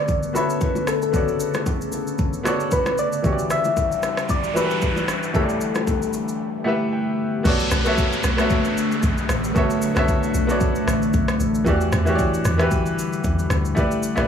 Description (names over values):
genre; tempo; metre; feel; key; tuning
amapiano; 114 BPM; 4/4; swing 55% on 16ths; B minor; A4 = 440 Hz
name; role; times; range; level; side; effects
soft struck synth lead; melody; 0.0-6.1 s; A4 to E5; -24 LUFS; left 2 dB; chorus, tape echo
clear concert grand piano; accompaniment; 0.0-14.3 s; E3 to G5; -24 LUFS; equal; none
deep dark ambient pad; sustained chords; 0.0-14.3 s; C#3 to F#5; -26 LUFS; left 1 dB; chorus, built-in reverb, sidechain pumping
deep house drum kit; drums; 0.1-14.3 s; crash cymbal, kick drum, rim click, shaker; -25 LUFS; equal; none
congas and bongos; percussion; 0.1-6.3 s; none; -30 LUFS; left 2 dB; none
noise sweep and downlifter; sound effects; 3.7-11.7 s; none; -29 LUFS; equal; none
deep log drum bass; bass; 7.5-14.3 s; A1 to E2; -23 LUFS; equal; none
room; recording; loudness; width
digital ambience; dry, gritty hardware recording, small room reverb; -19 LUFS; side -8 dB against mid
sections
0.0-7.5 A section; 7.5-14.3 B section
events
noise sweep 3.7-7.5; grand piano fill 6.4-7.5; drop 7.5-14.3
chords
0.0 Bm9; 3.2 Em9; 5.3 A9sus4; 7.5 Bm9; 11.7 Em9; 13.8 A9sus4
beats
0.08 0.61 | 1.14 1.66 2.19 2.72 | 3.24 3.77 4.29 4.82 | 5.35 5.87 6.40 6.93 | 7.45 7.98 8.51 9.03 | 9.56 10.08 10.61 11.14 | 11.66 12.19 12.72 13.24 | 13.77